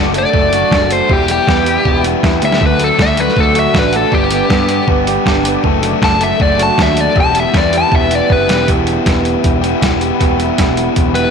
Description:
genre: indie rock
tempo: 158 BPM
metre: 4/4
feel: straight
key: unclear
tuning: A4 = 440 Hz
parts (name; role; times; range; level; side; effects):
- dark analog pad; sustained chords; 0.0-11.3 s; G4 to D6; -25 LUFS; equal; chorus
- biting overdriven guitar; riff; 0.0-11.3 s; D3 to A4; -17 LUFS; left 15 dB; none
- electric guitar through a small old amp; riff; 0.0-11.3 s; G3 to G4; -18 LUFS; right 14 dB; analog chorus, slapback echo
- growling picked electric bass; bass; 0.0-11.3 s; E1 to G2; -19 LUFS; equal; overdrive
- boom bap sampler-style drum kit; drums; 0.1-11.2 s; hi-hat, kick drum, snare drum; -16 LUFS; right 1 dB; none
- overdriven electric guitar; melody; 0.2-8.7, 11.1-11.3 s; G4 to A5; -15 LUFS; left 2 dB; slapback echo
room: light reverb, digital ambience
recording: 1960s-style stereo with parts hard left and right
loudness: -10 LUFS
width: side -6 dB against mid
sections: 0.0-8.7 A section; 8.7-11.3 B section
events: overdriven electric guitar solo 0.0-8.7; drum fill 8.3-8.7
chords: 0.0 D/F#; 1.1 Emadd9; 2.6 D; 4.1 G; 5.6 D/F#; 7.2 Emadd9

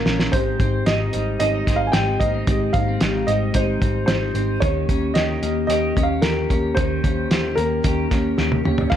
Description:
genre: jangly indie pop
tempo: 112 BPM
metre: 4/4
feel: straight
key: unclear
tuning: A4 = 440 Hz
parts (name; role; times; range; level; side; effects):
- dark upright piano; melody; 0.0-9.0 s; Bb4 to Ab5; -25 LUFS; right 1 dB; slapback echo
- twelve-string electric guitar; arpeggios; 0.0-9.0 s; F2 to G4; -26 LUFS; left 4 dB; wide subtle chorus, slapback echo
- vintage muted picked electric bass; bass; 0.1-9.0 s; Ab1 to F2; -25 LUFS; equal; none
- cloth-damped thuddy drum kit; drums; 0.1-9.0 s; crash cymbal, hi-hat, kick drum, snare drum, toms; -22 LUFS; equal; none
- fingerpicked steel-string acoustic guitar; accompaniment; 0.3-9.0 s; F2 to C5; -26 LUFS; right 1 dB; none
room: moderate small room reverb, RT60 0.5 s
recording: dark, warm production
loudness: -18 LUFS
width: side -10 dB against mid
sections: 0.0-9.0 A section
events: drum fill 0.0-0.3, 8.4-8.9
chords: 0.3 Abmaj7; 4.6 Eb7

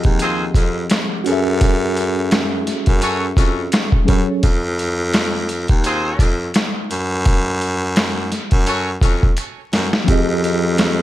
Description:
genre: hip hop, boom-bap hip-hop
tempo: 85 BPM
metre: 4/4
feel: swing 56% on 16ths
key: unclear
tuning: A4 = 440 Hz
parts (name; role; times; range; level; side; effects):
- mellow tine electric piano; accompaniment; 0.0-4.5, 10.0-11.0 s; F3 to Gb5; -20 LUFS; equal; medium stereo tremolo
- boom bap sampler-style drum kit; drums; 0.0-11.0 s; hi-hat, kick drum, rim click, snare drum; -16 LUFS; equal; none
- raspy baritone saxophone; bass; 0.1-11.0 s; Eb2 to Gb2; -21 LUFS; equal; none
- clear horn section; stabs; 0.2-8.9 s; C4 to Db5; -24 LUFS; left 1 dB; ping-pong delay
- finger snap; percussion; 0.9-11.0 s; none; -35 LUFS; left 5 dB; none
room: small room ambience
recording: vinyl crackle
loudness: -15 LUFS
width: side -14 dB against mid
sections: 0.0-11.0 A section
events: drum fill 9.4-10.1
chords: 0.0 Fm7; 1.3 Gbm7; 4.4 Fm7; 6.9 Gb5; 10.1 Fm7

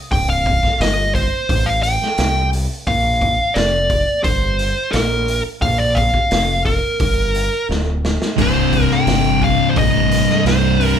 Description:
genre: stoner and doom metal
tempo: 87 BPM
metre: 4/4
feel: straight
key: C dorian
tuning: A4 = 439 Hz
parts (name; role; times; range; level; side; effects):
- fuzz lead guitar; melody; 0.1-10.9 s; Bb4 to G5; -18 LUFS; equal; distortion
- growling fingered electric bass; bass; 0.1-10.9 s; C1 to C2; -21 LUFS; equal; overdrive
- raw garage drum kit; drums; 0.1-11.0 s; hi-hat, kick drum, snare drum, splash cymbal; -21 LUFS; equal; none
- thick fuzz guitar; riff; 8.4-11.0 s; C2 to C3; -18 LUFS; left 7 dB; distortion
- thick fuzz guitar; riff; 8.4-11.0 s; C2 to C3; -18 LUFS; right 3 dB; distortion
room: light reverb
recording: band playing live in one room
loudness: -14 LUFS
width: side -8 dB against mid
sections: 0.0-11.0 A section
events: drum fill 7.7-8.4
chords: 0.0 C5; 2.9 Bb; 8.4 Cm

